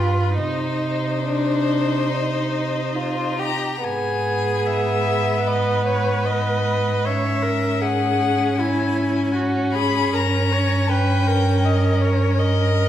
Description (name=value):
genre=classical, slow romantic movement for string quartet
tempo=66-82 BPM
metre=4/4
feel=rubato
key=C minor, G# minor from 3.8 s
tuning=A4 = 440 Hz
part: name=clear violin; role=melody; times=0.0-12.9 s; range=B4 to B5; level=-25 LUFS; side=left 7 dB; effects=none
part: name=clear violin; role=second line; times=0.0-12.9 s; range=B3 to G4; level=-24 LUFS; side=left 1 dB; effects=none
part: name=clear viola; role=accompaniment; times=0.0-12.9 s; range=Eb4 to C#5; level=-25 LUFS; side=right 3 dB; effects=none
part: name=rich cello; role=bass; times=0.0-12.9 s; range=G2 to C3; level=-23 LUFS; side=right 2 dB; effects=none
room=wet recital hall reverb, RT60 1.3 s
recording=recorded in a church or concert hall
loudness=-18 LUFS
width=side -11 dB against mid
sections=0.0-3.8 A section; 3.8-12.9 B section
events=none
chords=0.4 Cm; 3.8 G#m; 7.0 G#9sus4; 10.1 D#7/G